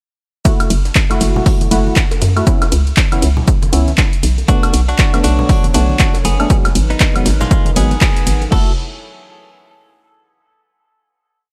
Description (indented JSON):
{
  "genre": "deep house",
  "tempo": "119 BPM",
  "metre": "4/4",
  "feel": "swing 59% on 16ths",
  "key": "unclear",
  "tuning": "A4 = 439 Hz",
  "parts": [
    { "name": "percussive organ stab", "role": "stabs", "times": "0.4-8.7 s", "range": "F#3 to F#4", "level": "-23 LUFS", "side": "equal", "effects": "analog chorus, sidechain pumping, digital delay" },
    { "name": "breakbeat sampler-style drum kit", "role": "drums", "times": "0.5-8.4 s", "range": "hi-hat, shaker, snare drum", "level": "-32 LUFS", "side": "equal", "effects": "none" },
    { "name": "electronic kick drum", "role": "drums", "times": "0.5-8.6 s", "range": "none", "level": "-16 LUFS", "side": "equal", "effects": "overdrive" },
    { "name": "punchy analog drum machine", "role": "drums", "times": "0.5-8.6 s", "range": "crash cymbal, handclaps, hi-hat, ride cymbal, woodblock", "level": "-23 LUFS", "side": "equal", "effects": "overdrive" },
    { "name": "bongos and congas", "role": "percussion", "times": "0.6-8.5 s", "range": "none", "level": "-29 LUFS", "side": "equal", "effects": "none" },
    { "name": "hollow knocking FM bass", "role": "bass", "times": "0.7-8.8 s", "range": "F#1 to F#2", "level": "-17 LUFS", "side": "equal", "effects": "sidechain pumping" },
    { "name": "direct-recorded clean electric guitar", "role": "melody", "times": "4.5-8.7 s", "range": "G#3 to A4", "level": "-25 LUFS", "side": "equal", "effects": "dub echo" },
    { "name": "dark analog pad", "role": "sustained chords", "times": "4.5-8.8 s", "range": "F#3 to C#5", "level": "-30 LUFS", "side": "equal", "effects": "chorus, sidechain pumping" }
  ],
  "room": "little or no reverb",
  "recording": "none",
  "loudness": "-14 LUFS",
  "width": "mono",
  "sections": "0.5-8.5 drop; 8.5-10.5 final chord",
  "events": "drop 0.5-8.5; band accent 8.0",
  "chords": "0.5 F#m7; 2.5 C#m7; 4.2 Bm7; 6.5 G#m7; 8.5 F#m7"
}